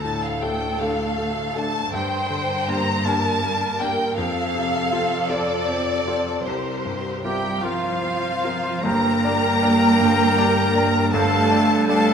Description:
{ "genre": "cinematic, emotional film score for orchestra", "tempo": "53 BPM (dotted quarters)", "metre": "6/8", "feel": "rubato", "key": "unclear", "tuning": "A4 = 439 Hz", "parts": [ { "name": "rich studio violin section", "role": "melody", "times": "0.0-12.1 s", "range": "A4 to Bb5", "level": "-28 LUFS", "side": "left 5 dB", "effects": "none" }, { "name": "rich symphonic violin section", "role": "second line", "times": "0.0-12.1 s", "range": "C5 to Bb5", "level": "-25 LUFS", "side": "equal", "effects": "none" }, { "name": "bright grand piano", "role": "accompaniment", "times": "0.0-12.1 s", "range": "G1 to D5", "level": "-27 LUFS", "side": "left 2 dB", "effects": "none" }, { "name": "rich symphonic viola section", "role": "accompaniment", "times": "0.0-12.1 s", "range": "F4 to C5", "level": "-29 LUFS", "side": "right 2 dB", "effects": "none" }, { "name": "rich symphonic cello section", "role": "bass", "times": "0.0-12.1 s", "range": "C2 to Bb3", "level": "-25 LUFS", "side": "right 2 dB", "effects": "none" }, { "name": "bright concert flute", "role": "second line", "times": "7.2-12.1 s", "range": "C5 to G5", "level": "-28 LUFS", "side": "left 1 dB", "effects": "none" }, { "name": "mellow cor anglais", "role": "second line", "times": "7.2-12.1 s", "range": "F4 to Bb4", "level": "-27 LUFS", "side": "right 3 dB", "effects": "none" }, { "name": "mellow French horn section", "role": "sustained chords", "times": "8.8-12.1 s", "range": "G3 to D4", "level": "-27 LUFS", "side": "right 1 dB", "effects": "none" }, { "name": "rich studio double bass section", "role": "bass", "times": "8.8-12.1 s", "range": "G2", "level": "-27 LUFS", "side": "right 3 dB", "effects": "none" } ], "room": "moderate concert hall reverb, RT60 1.9 s", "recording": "none", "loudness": "-19 LUFS", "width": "side -7 dB against mid", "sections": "0.0-8.8 A section; 8.8-12.1 B section", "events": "none", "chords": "0.0 Dm; 1.9 Gm; 4.2 F; 6.5 C7sus4; 8.8 Gm" }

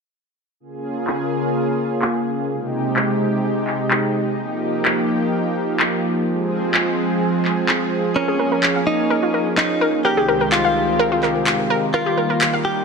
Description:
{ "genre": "progressive house", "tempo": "127 BPM", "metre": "4/4", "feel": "straight", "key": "Bb dorian", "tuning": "A4 = 439 Hz", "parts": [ { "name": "lush unison pad", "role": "sustained chords", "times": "0.6-12.8 s", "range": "C2 to Ab4", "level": "-20 LUFS", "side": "right 1 dB", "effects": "chorus" }, { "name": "electronic handclaps", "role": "drums", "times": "1.1-12.5 s", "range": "none", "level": "-22 LUFS", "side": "left 1 dB", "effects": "low-pass filter on snare, low-pass filter on room" }, { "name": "direct-recorded clean electric guitar", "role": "melody", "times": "8.2-12.8 s", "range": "Db4 to G4", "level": "-20 LUFS", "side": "equal", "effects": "tape echo" }, { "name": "glassy wavetable pluck", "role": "arpeggios", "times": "8.2-12.6 s", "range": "F4 to F5", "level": "-22 LUFS", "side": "equal", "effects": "chorus, tape echo" } ], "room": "moderate lush hall reverb, RT60 2.1 s", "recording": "none", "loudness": "-17 LUFS", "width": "side -4 dB against mid", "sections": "0.6-12.8 A section", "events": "filter sweep on drum 0.6-12.8", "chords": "0.6 Bbm7; 2.5 Abmaj7/C; 4.4 Ebadd9; 6.3 Fm; 8.2 Bbm7; 10.0 Abmaj7/C; 11.9 Ebadd9" }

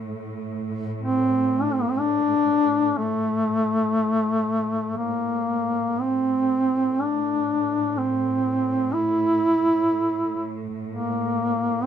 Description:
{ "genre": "caucasian folk, Caucasian lament", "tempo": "62 BPM", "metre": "3/4", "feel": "rubato", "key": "A phrygian", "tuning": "A4 = 440 Hz", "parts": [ { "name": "muted studio string section", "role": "drone", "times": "0.0-11.9 s", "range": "A2", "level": "-32 LUFS", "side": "right 2 dB", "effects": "none" }, { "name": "mellow duduk", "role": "melody", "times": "1.0-11.9 s", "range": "A3 to E4", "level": "-21 LUFS", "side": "equal", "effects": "none" } ], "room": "light reverb", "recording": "band playing live in one room", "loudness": "-21 LUFS", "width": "side -8 dB against mid", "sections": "0.0-6.0 A section; 6.0-11.9 B section", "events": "none", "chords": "none" }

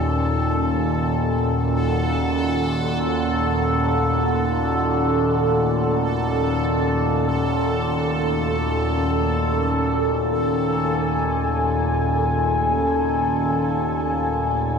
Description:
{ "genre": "dark ambient drone", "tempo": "free time", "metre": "none", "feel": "none", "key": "unclear", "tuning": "A4 = 440 Hz", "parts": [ { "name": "deep dark ambient pad", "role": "sustained chords", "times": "0.0-14.8 s", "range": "Db4 to Ab5", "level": "-23 LUFS", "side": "equal", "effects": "chorus, built-in reverb, shimmer reverb" }, { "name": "overtone-sweeping drone", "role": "drone", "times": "0.0-14.8 s", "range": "Eb2 to Bb2", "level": "-22 LUFS", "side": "equal", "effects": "chorus, built-in reverb" }, { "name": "bubbling stepped-filter texture", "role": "texture", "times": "0.0-14.8 s", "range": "A4", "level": "-26 LUFS", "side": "right 1 dB", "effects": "chorus, built-in reverb, shimmer reverb" } ], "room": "wet spring reverb, RT60 2.7 s", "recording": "none", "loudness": "-19 LUFS", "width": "side -6 dB against mid", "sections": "0.0-14.8 A section", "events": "none", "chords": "0.0 Gbm" }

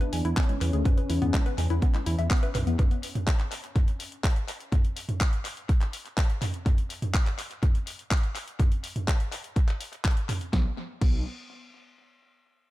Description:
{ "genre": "melodic techno", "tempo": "124 BPM", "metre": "4/4", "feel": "straight", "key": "unclear", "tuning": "A4 = 442 Hz", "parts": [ { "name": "wide unison lead", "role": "melody", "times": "0.0-2.7 s", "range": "C#4 to D4", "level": "-35 LUFS", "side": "left 2 dB", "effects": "sidechain pumping, dub echo" }, { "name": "warbly dusty pluck", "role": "arpeggios", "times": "0.0-2.7, 10.5-11.2 s", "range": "G#3 to G#5", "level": "-34 LUFS", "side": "left 2 dB", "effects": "chorus, sidechain pumping, tape echo" }, { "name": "deep house drum kit", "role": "drums", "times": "0.0-11.1 s", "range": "crash cymbal, handclaps, hi-hat, snare drum, toms", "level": "-32 LUFS", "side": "equal", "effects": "overdrive, sidechain pumping on hats, sidechain pumping on toms, sidechain pumping on cymbals, tape echo" }, { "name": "swelling detuned saw bass", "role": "bass", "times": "0.1-2.8, 10.5-11.2 s", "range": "B1 to E2", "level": "-27 LUFS", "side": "equal", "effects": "sidechain pumping" }, { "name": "electronic kick drum", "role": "drums", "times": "0.4-11.1 s", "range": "none", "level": "-24 LUFS", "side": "equal", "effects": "none" } ], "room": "little or no reverb", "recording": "echo-heavy mix", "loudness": "-24 LUFS", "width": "side -17 dB against mid", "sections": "0.0-10.5 A section; 10.5-12.5 B section", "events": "none", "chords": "0.0 E; 2.8 N.C." }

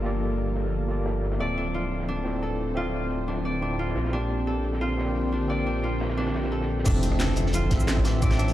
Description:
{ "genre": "liquid drum and bass", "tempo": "176 BPM", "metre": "4/4", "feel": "straight", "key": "unclear", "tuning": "A4 = 437 Hz", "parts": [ { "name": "overdriven tine electric piano", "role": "accompaniment", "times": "0.0-8.5 s", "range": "Bb3 to E5", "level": "-31 LUFS", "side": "equal", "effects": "fast tremolo, low-pass filter, tape echo" }, { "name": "ethereal airy pad", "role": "sustained chords", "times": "0.0-8.5 s", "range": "D3 to E5", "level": "-33 LUFS", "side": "equal", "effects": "ensemble chorus, built-in reverb, sidechain pumping" }, { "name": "swelling detuned saw bass", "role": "bass", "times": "0.0-8.5 s", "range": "D1 to Bb1", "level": "-28 LUFS", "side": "equal", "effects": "none" }, { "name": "crunchy breakbeat drum kit", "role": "drums", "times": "0.0-8.5 s", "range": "hi-hat, snare drum", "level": "-39 LUFS", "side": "equal", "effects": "high-pass filter on hats, low-pass filter on hats, high-pass filter on snare, low-pass filter on snare, high-pass filter on room, low-pass filter on room" }, { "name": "concert harp", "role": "arpeggios", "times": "1.4-8.5 s", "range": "D4 to D5", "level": "-32 LUFS", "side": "left 1 dB", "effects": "dub echo" }, { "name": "drum and bass drum kit", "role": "drums", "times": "6.9-8.5 s", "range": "crash cymbal, hi-hat, rim click, shaker, snare drum", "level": "-32 LUFS", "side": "equal", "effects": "none" }, { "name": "electronic kick drum", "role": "drums", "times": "6.9-8.3 s", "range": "none", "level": "-24 LUFS", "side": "equal", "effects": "none" }, { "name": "impact", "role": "sound effects", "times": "7.0-8.2 s", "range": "none", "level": "-32 LUFS", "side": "equal", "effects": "none" } ], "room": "moderate lush hall reverb, RT60 1.6 s", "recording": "played on a big sound system in a bare room, large studio reverb", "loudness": "-24 LUFS", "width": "side -13 dB against mid", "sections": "0.0-6.9 A section; 6.9-8.5 B section", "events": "drop 6.9-8.5; impact 6.9-8.2", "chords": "0.0 Gm9; 1.4 Dm9; 4.0 Bb69; 6.9 Fmaj7" }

